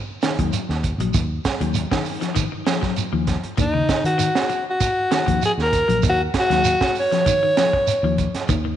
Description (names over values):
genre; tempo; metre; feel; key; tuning
afrobeat; 98 BPM; 4/4; straight; Eb minor; A4 = 440 Hz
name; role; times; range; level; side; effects
electric guitar at the edge of break-up; arpeggios; 0.2-8.8 s; Db3 to Gb3; -27 LUFS; left 8 dB; wide subtle chorus
crunchy breakbeat drum kit; drums; 0.2-8.6 s; hi-hat, kick drum, snare drum; -24 LUFS; right 3 dB; none
shekere; percussion; 0.2-8.7 s; none; -28 LUFS; right 5 dB; none
fingered electric bass; bass; 0.4-8.7 s; Bb1 to Eb3; -23 LUFS; equal; none
raspy alto saxophone; melody; 3.6-8.2 s; Eb4 to Db5; -19 LUFS; equal; none
room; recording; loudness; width
moderate echo chamber reverb, RT60 2.0 s, small room ambience; 1960s-style stereo, nothing above 10.8 kHz; -18 LUFS; side -11 dB against mid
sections
0.0-8.8 A section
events
none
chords
0.0 Ebmadd9